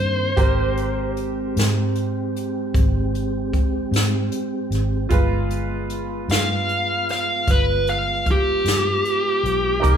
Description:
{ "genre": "slow blues", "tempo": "51 BPM (dotted quarters)", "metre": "12/8", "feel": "straight", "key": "unclear", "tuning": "A4 = 438 Hz", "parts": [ { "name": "dark smooth lead guitar", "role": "melody", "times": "0.0-10.0 s", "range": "G4 to F5", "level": "-20 LUFS", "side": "equal", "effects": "overdrive" }, { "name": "bright upright piano", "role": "accompaniment", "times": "0.0-10.0 s", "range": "Ab3 to D6", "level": "-28 LUFS", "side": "right 4 dB", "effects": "none" }, { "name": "mellow tonewheel organ", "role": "sustained chords", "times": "0.0-10.0 s", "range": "Eb3 to G4", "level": "-27 LUFS", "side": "right 1 dB", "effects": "slow rotary speaker" }, { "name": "vintage muted fingered electric bass", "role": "bass", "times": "0.0-10.0 s", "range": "G1 to Ab2", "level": "-24 LUFS", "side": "equal", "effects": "none" }, { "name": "jazz brush drum kit", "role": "drums", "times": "0.4-10.0 s", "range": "hi-hat, kick drum, snare drum", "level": "-22 LUFS", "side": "equal", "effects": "none" } ], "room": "moderate large studio reverb, RT60 1.1 s", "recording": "band playing live in one room", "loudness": "-19 LUFS", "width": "side -8 dB against mid", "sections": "0.0-10.0 A section", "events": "none", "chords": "0.4 Abmaj7; 5.1 G7b9" }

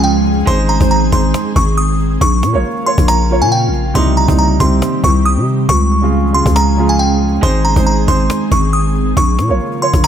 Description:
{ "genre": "hip hop, trap", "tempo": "138 BPM", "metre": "4/4", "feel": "half-time", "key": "unclear", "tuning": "A4 = 440 Hz", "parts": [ { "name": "delicate synth tine bell", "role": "melody", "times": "0.0-10.1 s", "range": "G5 to Eb6", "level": "-17 LUFS", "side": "equal", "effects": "chorus" }, { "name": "dark grand piano", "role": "accompaniment", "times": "0.0-10.1 s", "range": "C3 to Db5", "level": "-19 LUFS", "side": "right 5 dB", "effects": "none" }, { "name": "ethereal airy pad", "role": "sustained chords", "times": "0.0-10.1 s", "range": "Db3 to Ab4", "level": "-18 LUFS", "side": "equal", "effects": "ensemble chorus, built-in reverb" }, { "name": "growling 808-style bass", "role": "bass", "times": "0.0-10.0 s", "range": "Ab1 to C3", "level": "-14 LUFS", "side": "left 1 dB", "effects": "none" }, { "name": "cajon", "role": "drums", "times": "0.0-10.1 s", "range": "none", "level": "-19 LUFS", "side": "left 1 dB", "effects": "none" }, { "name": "downlifter", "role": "sound effects", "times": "0.0-0.5 s", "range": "none", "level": "-41 LUFS", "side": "left 1 dB", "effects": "none" } ], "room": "little or no reverb", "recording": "none", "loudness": "-11 LUFS", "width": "side -9 dB against mid", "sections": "0.0-10.1 A section", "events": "none", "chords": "0.5 Ab; 2.2 Bbm; 4.0 Cm; 5.7 Db; 7.4 Ab; 9.2 Bbm" }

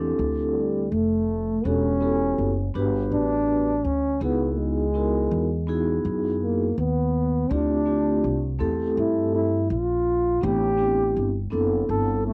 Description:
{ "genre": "hip hop, jazz-hop", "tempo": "82 BPM", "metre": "4/4", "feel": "swing 62% on 16ths", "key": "unclear", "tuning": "A4 = 440 Hz", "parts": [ { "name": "dark trombone", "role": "melody", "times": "0.0-12.3 s", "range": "F#3 to A4", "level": "-27 LUFS", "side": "equal", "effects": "cassette tape" }, { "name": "vibraphone with soft mallets", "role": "accompaniment", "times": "0.0-12.3 s", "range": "A3 to B4", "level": "-28 LUFS", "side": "equal", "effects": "cassette tape" }, { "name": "upright bass", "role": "bass", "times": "0.0-12.3 s", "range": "E1 to G2", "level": "-29 LUFS", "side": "equal", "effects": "none" } ], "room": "moderate booth ambience, RT60 0.3 s", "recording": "home recording on cassette", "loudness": "-24 LUFS", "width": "mono", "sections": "0.0-12.3 A section", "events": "none", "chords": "0.0 Am11; 1.6 Em11; 4.2 C#m11; 7.5 Dm11; 10.4 Am11" }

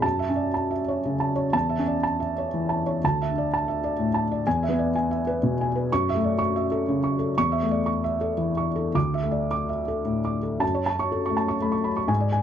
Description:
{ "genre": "neoclassical minimalist piano", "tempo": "103-130 BPM", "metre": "3/4", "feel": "rubato", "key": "F# minor", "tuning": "A4 = 441 Hz", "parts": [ { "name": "felt-muted upright piano", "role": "solo", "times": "0.0-12.4 s", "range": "D2 to D6", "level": "-22 LUFS", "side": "equal", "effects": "none" } ], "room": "small room ambience", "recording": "dry, close 1970s-style studio recording", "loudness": "-22 LUFS", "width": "side -9 dB against mid", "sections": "0.0-10.6 A section; 10.6-12.4 B section", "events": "none", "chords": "0.0 F#m7; 1.5 A/E; 3.0 Dsus2; 4.5 E; 5.9 F#m7; 7.4 A/E; 8.9 Dsus2; 10.6 F#m" }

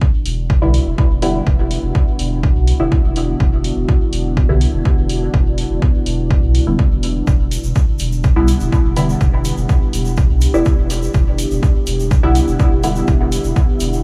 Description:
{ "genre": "dub techno", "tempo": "124 BPM", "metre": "4/4", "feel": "straight", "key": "E minor", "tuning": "A4 = 442 Hz", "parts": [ { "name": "deep dark ambient pad", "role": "sustained chords", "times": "0.0-14.0 s", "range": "B3 to G4", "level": "-26 LUFS", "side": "equal", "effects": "chorus, built-in reverb, sidechain pumping" }, { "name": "electronic kick drum", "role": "drums", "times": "0.0-13.7 s", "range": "none", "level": "-16 LUFS", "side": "equal", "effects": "none" }, { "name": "pure sine sub bass", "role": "bass", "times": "0.3-14.0 s", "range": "E1 to B1", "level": "-20 LUFS", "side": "equal", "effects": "sidechain pumping" }, { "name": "electronic hi-hat", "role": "drums", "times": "0.3-13.9 s", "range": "none", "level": "-33 LUFS", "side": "equal", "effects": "none" }, { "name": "filtered dub chord stab", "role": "stabs", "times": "0.6-13.1 s", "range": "D3 to E4", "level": "-24 LUFS", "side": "equal", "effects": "phaser, sidechain pumping, dub echo" }, { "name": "tube shaker", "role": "percussion", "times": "7.3-14.0 s", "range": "none", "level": "-36 LUFS", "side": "equal", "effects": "none" } ], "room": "moderate cathedral reverb, RT60 6.5 s", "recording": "dreamy mix soaked in reverb", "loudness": "-16 LUFS", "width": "mono", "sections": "0.0-14.0 A section", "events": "none", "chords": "0.0 Em7" }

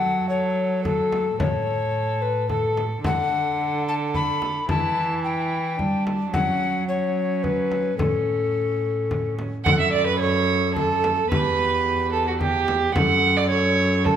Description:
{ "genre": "classical, renaissance-style consort dance", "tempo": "109 BPM", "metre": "3/4", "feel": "straight", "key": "unclear", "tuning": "A4 = 440 Hz", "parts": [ { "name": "mellow hollow tenor recorder", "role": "melody", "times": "0.0-14.2 s", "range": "G4 to B5", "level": "-25 LUFS", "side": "left 4 dB", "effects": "none" }, { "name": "dark violin", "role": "second line", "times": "0.0-14.2 s", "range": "C#4 to F#5", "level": "-24 LUFS", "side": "right 5 dB", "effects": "none" }, { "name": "rich cello", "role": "bass", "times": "0.0-14.2 s", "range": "E2 to G3", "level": "-26 LUFS", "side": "right 1 dB", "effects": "none" }, { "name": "frame drum", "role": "percussion", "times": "0.9-14.2 s", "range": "none", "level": "-28 LUFS", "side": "left 1 dB", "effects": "none" } ], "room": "wet recital hall reverb, RT60 1.6 s", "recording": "none", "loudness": "-20 LUFS", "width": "side -9 dB against mid", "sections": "0.0-9.7 A section; 9.7-14.2 A section", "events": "none", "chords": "0.0 F#m; 1.4 A; 3.0 D; 4.7 Em; 6.3 F#5; 8.0 A; 9.7 F#m; 11.3 Em; 13.0 F#m" }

